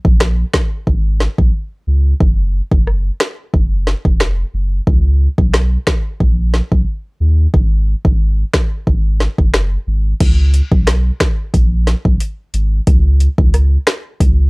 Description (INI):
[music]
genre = dancehall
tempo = 90 BPM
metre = 4/4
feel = straight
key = unclear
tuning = A4 = 440 Hz
[part]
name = saturated sub bass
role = bass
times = 0.0-14.5 s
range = E#1 to D#2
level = -14 LUFS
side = equal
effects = transformer saturation
[part]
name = afro-pop drum kit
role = drums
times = 0.0-14.4 s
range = crash cymbal, finger snaps, hi-hat, kick drum, rim click, snare drum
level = -13 LUFS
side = equal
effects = none
[sound]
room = little or no reverb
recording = dry, gritty hardware recording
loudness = -12 LUFS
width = side -29 dB against mid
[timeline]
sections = 0.0-10.2 A section; 10.2-14.5 B section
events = none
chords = none